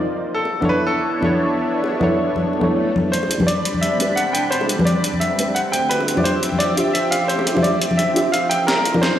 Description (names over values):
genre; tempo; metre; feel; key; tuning
liquid drum and bass; 173 BPM; 4/4; straight; unclear; A4 = 441 Hz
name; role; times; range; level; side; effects
deep mellow chord stab; accompaniment; 0.0-9.2 s; A3 to E5; -22 LUFS; right 1 dB; chorus, dub echo
lush unison pad; sustained chords; 0.0-9.2 s; F3 to D6; -24 LUFS; equal; chorus, phaser, vintage 12-bit sampler grit
bright grand piano; melody; 0.3-9.2 s; A4 to G5; -22 LUFS; equal; low-pass filter, dub echo
bongos and congas; percussion; 0.5-9.0 s; none; -22 LUFS; left 1 dB; none
swell; sound effects; 2.6-3.1 s; none; -30 LUFS; left 5 dB; none
dark detuned saw bass; bass; 3.1-9.2 s; D1 to D2; -31 LUFS; right 1 dB; none
breakbeat sampler-style drum kit; drums; 3.1-9.1 s; hi-hat, snare drum; -24 LUFS; equal; high-pass filter on hats, high-pass filter on snare
room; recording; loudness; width
wet recital hall reverb, RT60 1.5 s, digital ambience; played on a big sound system in a bare room, stone room reverb, high-pass filter; -16 LUFS; side -10 dB against mid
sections
0.0-3.1 A section; 3.1-9.2 B section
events
swell 2.6-3.1; build-up 3.1-9.2; drum fill 8.7-9.2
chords
0.4 Bm11; 3.1 Am11; 5.7 Dm11; 8.7 Cm11